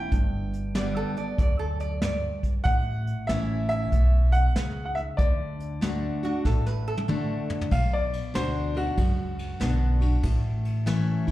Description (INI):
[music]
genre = honky-tonk and classic country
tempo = 95 BPM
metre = 4/4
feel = swing 65% on 8ths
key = unclear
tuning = A4 = 440 Hz
[part]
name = bright upright piano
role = melody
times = 0.0-10.6 s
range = F#4 to G5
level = -31 LUFS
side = equal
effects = slapback echo
[part]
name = picked steel-string acoustic guitar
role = accompaniment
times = 0.0-11.3 s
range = F#2 to G4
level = -30 LUFS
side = left 1 dB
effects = slapback echo
[part]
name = upright bass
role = bass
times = 0.1-11.1 s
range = G1 to D2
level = -26 LUFS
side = equal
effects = none
[part]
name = vintage brush drum kit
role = drums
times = 0.1-11.3 s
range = hi-hat, kick drum, ride cymbal, snare drum, toms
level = -27 LUFS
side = equal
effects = none
[part]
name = lap resonator guitar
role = second line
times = 0.8-7.6 s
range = F#4 to D5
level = -33 LUFS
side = right 3 dB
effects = slapback echo
[sound]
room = small room reverb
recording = live gig heard through the venue's PA, club reverb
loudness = -23 LUFS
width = side -15 dB against mid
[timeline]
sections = 0.0-7.7 A section; 7.7-11.3 B section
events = drum fill 6.5-7.7; upright piano solo 7.7-11.3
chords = 0.1 G; 2.7 A; 5.2 D; 7.7 Bm; 10.2 A